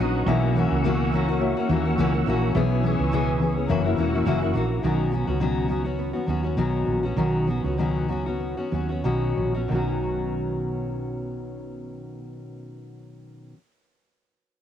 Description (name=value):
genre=acoustic pop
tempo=89-105 BPM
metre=4/4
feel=swing 55% on 16ths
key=B major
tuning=A4 = 440 Hz
part: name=dark upright piano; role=accompaniment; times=0.0-4.9 s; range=C#4 to E5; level=-32 LUFS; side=left 6 dB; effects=cassette tape
part: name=fingerpicked steel-string acoustic guitar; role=accompaniment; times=0.0-13.6 s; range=F#2 to G#4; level=-25 LUFS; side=left 5 dB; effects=cassette tape
part: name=mellow tonewheel organ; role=sustained chords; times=0.0-4.8 s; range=A#4 to E6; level=-31 LUFS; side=right 3 dB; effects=chorus vibrato, slow rotary speaker, cassette tape
part: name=fingerpicked steel-string acoustic guitar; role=arpeggios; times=0.0-13.6 s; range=D#3 to G#4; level=-32 LUFS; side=right 9 dB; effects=cassette tape
part: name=woody fretless electric bass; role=bass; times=0.0-13.5 s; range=E1 to D#2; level=-26 LUFS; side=right 2 dB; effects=none
room=light reverb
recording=home recording on cassette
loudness=-22 LUFS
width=side -10 dB against mid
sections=0.0-4.8 A section; 4.8-9.7 B section; 9.7-12.4 C section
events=slowing down 4.8-9.7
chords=0.3 F#7/B; 2.6 C#m7/B; 3.7 F#7; 4.8 Badd9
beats=| 0.27 0.84 1.41 1.98 | 2.55 3.12 3.69 4.26 | 4.83 5.41 5.99 6.57 | 7.17 7.78 8.40 9.04 | 9.70 10.38 11.05 11.72